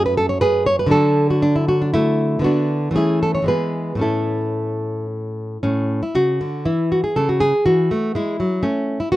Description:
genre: classical, baroque-style dance for nylon-string guitar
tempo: 108-124 BPM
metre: 3/4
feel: rubato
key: A major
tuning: A4 = 440 Hz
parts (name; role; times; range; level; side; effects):
- nylon-string guitar; solo; 0.0-9.2 s; F#2 to C#5; -17 LUFS; equal; none
room: small room reverb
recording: dry, close 1970s-style studio recording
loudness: -17 LUFS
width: side -16 dB against mid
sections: 0.0-5.6 A section; 5.6-9.2 B section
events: none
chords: 0.0 F#m; 0.9 D; 2.4 Bm/D; 2.9 A/E; 3.5 E; 4.0 A; 7.1 A/C#; 8.6 F#m/A (rootless)

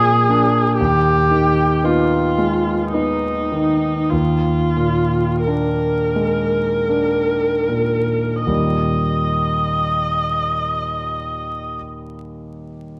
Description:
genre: classical, romantic duo for viola and grand piano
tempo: 36-59 BPM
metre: 3/4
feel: rubato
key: Eb major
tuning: A4 = 441 Hz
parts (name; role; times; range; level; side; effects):
- rich viola; melody; 0.0-11.7 s; Eb4 to Eb5; -21 LUFS; equal; none
- clear concert grand piano; accompaniment; 0.0-13.0 s; Eb2 to G4; -22 LUFS; equal; none
room: wet scoring stage reverb, RT60 1.9 s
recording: dark, warm production, vinyl crackle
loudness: -18 LUFS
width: mono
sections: 0.0-8.5 A section; 8.5-12.9 B section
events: slowing down 0.0-8.5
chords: 0.0 Bb7; 0.8 Abm/Eb; 4.1 Bb7/Eb; 8.5 Eb

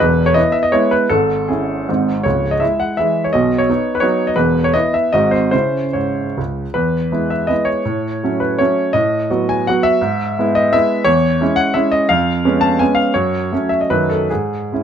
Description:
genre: classical, romantic triple-time dance for piano with dotted rhythms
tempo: 135-184 BPM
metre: 3/4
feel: rubato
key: C# minor, E major from 6.8 s, C# minor from 11.1 s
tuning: A4 = 441 Hz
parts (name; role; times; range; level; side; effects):
- clear grand piano; solo; 0.0-14.8 s; C#1 to A5; -14 LUFS; equal; none
room: light reverb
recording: none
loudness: -14 LUFS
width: side -8 dB against mid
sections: 0.0-6.8 A section; 6.8-14.8 B section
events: none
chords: 0.0 E; 1.1 C#m/G#; 1.9 G#; 2.3 C#m; 3.3 B; 4.4 E5; 5.1 G#7; 5.5 C#m; 6.8 E; 7.9 F#m/A; 9.0 B7/A; 10.0 E/G#; 11.1 C#m/E; 12.1 C#7/E#; 13.1 F#m; 13.9 D#dim/F#; 14.3 C#m/G#

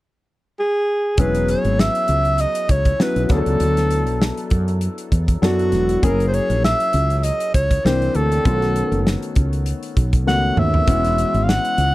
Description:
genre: polished 1980s jazz-funk pop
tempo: 99 BPM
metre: 4/4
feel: swing 54% on 16ths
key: E major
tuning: A4 = 439 Hz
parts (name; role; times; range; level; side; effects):
- breathy alto saxophone; melody; 0.6-11.9 s; F#4 to F#5; -20 LUFS; right 1 dB; none
- warm grand piano; accompaniment; 1.2-11.9 s; D#3 to A4; -24 LUFS; left 3 dB; analog chorus
- woody fretless electric bass; bass; 1.2-11.9 s; E1 to F#2; -20 LUFS; equal; none
- modern studio drum kit; drums; 1.2-11.9 s; hi-hat, kick drum, snare drum, toms; -20 LUFS; equal; none
room: little or no reverb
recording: dry, close 1970s-style studio recording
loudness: -16 LUFS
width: side -17 dB against mid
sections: 0.0-1.2 A section; 1.2-11.9 B section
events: drum fill 10.3-10.9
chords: 0.0 N.C.; 1.2 E6; 3.3 D69; 6.0 F#7; 7.8 C9; 8.5 B7; 10.9 E6

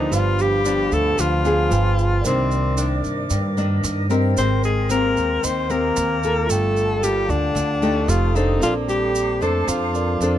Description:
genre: bossa nova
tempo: 113 BPM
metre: 4/4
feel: straight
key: unclear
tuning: A4 = 440 Hz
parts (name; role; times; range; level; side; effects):
- breathy alto saxophone; melody; 0.0-10.4 s; C4 to C5; -22 LUFS; left 2 dB; none
- clear trombone; second line; 0.0-10.4 s; C3 to C4; -30 LUFS; right 5 dB; none
- bell-like tine electric piano; accompaniment; 0.0-10.4 s; C4 to G5; -29 LUFS; right 3 dB; none
- nylon-string guitar; accompaniment; 0.0-10.4 s; G2 to C5; -24 LUFS; left 2 dB; none
- flute section; sustained chords; 0.0-10.4 s; G4 to Eb6; -31 LUFS; right 2 dB; none
- upright bass; bass; 0.0-10.4 s; F1 to G2; -22 LUFS; right 1 dB; none
- tube shaker; percussion; 0.1-10.4 s; none; -31 LUFS; right 6 dB; none
room: little or no reverb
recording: close, detailed microphones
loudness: -17 LUFS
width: side -11 dB against mid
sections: 0.0-10.4 A section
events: none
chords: 0.1 G7; 1.7 G7b9; 2.2 Cm9; 4.4 Abmaj9; 6.5 Gm9; 8.1 F9; 8.6 Bbmaj9

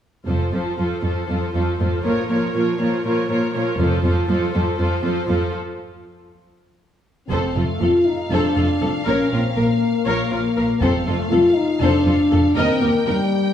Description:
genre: cinematic, epic orchestral film score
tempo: 240 BPM (eighths)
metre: 7/8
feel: straight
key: F mixolydian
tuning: A4 = 440 Hz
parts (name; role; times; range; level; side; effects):
- warm studio violin section; second line; 0.3-13.2 s; F4 to Eb5; -27 LUFS; left 2 dB; none
- rich symphonic viola section; accompaniment; 0.3-13.1 s; F3 to Bb4; -25 LUFS; right 1 dB; none
- clear symphonic cello section; bass; 0.3-13.1 s; Eb2 to Bb2; -23 LUFS; right 1 dB; none
- clear symphonic double bass section; bass; 0.3-4.0, 7.3-13.2 s; F1 to Eb2; -25 LUFS; right 2 dB; none
- rich symphonic violin section; melody; 7.3-13.5 s; F5 to G5; -31 LUFS; left 1 dB; none
- mellow French horn section; sustained chords; 7.3-13.5 s; G3 to F4; -18 LUFS; left 2 dB; none
- taiko ensemble; drums; 7.3-11.8 s; none; -29 LUFS; left 1 dB; none
room: moderate scoring stage reverb, RT60 1.9 s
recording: small room ambience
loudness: -17 LUFS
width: side -10 dB against mid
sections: 0.3-7.3 A section; 7.3-13.5 B section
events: break 5.5-7.3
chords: 0.3 F; 2.0 Bbm; 3.8 F; 5.5 N.C.; 7.3 F; 9.1 Bbm; 10.8 F; 12.6 Eb

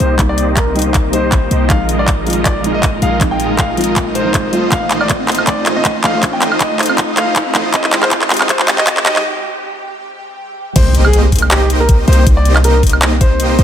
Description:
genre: future bass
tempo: 159 BPM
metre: 4/4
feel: swing 54% on 16ths, half-time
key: C minor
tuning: A4 = 440 Hz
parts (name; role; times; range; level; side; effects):
- clear concert grand piano; melody; 0.0-13.6 s; G4 to G5; -19 LUFS; left 1 dB; sidechain pumping, ping-pong delay
- soft round pluck; accompaniment; 0.0-4.7 s; F3 to F4; -20 LUFS; equal; wide subtle chorus, sidechain pumping, ping-pong delay
- shimmering ambient pad; sustained chords; 0.1-13.6 s; Bb2 to G4; -26 LUFS; left 1 dB; chorus, built-in reverb, vintage 12-bit sampler grit, sidechain pumping
- dense compressed supersaw; riff; 0.0-13.6 s; Ab3 to Eb5; -19 LUFS; right 1 dB; sidechain pumping, low-pass filter
- warm 808-style bass; bass; 0.0-13.6 s; Ab1 to C2; -15 LUFS; equal; sidechain pumping
- trap drum kit; drums; 0.0-13.6 s; crash cymbal, handclaps, hi-hat, woodblock; -16 LUFS; equal; none
- riser and impact; sound effects; 2.6-12.3 s; none; -24 LUFS; equal; none
- electronic kick drum; drums; 0.2-13.3 s; none; -14 LUFS; equal; none
- thumb-piano-like synth pluck; arpeggios; 4.7-9.2 s; A3 to G5; -27 LUFS; right 2 dB; chorus, sidechain pumping, ping-pong delay
room: light reverb, digital ambience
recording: high-pass filter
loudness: -10 LUFS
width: side -9 dB against mid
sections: 0.0-10.8 A section; 10.8-13.6 B section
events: build-up 0.0-10.8; drum fill 0.0-9.2; filter sweep on supersaw synth 0.0-10.8; filter sweep 0.0-10.8; riser 2.6-9.2; break 9.2-10.8; drop 10.8-13.6; impact 10.8-12.3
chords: 0.0 Cm7; 1.7 Bb7sus4; 4.5 F7/A; 7.7 Abmaj7; 10.8 Cm7

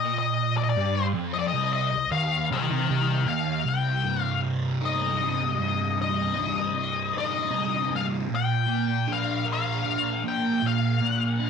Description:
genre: rock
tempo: 52 BPM (dotted quarters)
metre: 6/8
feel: straight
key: C minor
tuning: A4 = 439 Hz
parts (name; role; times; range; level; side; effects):
- octave-fuzz lead guitar; melody; 0.0-11.5 s; C5 to G5; -27 LUFS; left 8 dB; distortion, slapback echo
- thick fuzz guitar; riff; 0.0-11.5 s; C2 to Bb4; -26 LUFS; right 2 dB; distortion, phaser
room: light reverb, digital ambience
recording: none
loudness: -23 LUFS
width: side -6 dB against mid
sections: 0.0-3.7 A section; 3.7-11.5 B section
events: none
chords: 0.0 Cm; 8.3 Bb

